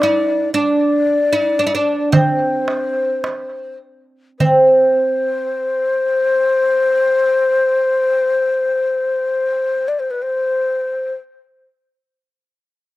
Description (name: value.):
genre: Arabic maqam ensemble.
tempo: 101-118 BPM (eighths).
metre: 10/8.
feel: straight.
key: unclear.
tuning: A4 = 440 Hz.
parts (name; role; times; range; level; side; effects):
oud; melody; 0.0-8.5 s; C4 to E4-50c; -16 LUFS; right 2 dB; none.
breathy mellow ney; second line; 0.0-11.1 s; B4 to D5; -16 LUFS; left 2 dB; none.
darbuka; percussion; 0.0-5.0 s; none; -17 LUFS; right 2 dB; none.
room: light reverb.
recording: recorded outdoors, with no room sound.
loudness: -14 LUFS.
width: side -16 dB against mid.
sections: 0.0-4.4 A section; 4.4-10.3 B section.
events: slowing down 0.0-4.4.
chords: none.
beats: 0.02 0.53 1.05 1.58 2.12 2.67 3.24 3.81 | 4.40 4.99 5.59 6.18 6.78 7.37 7.97 8.56 9.15 9.75.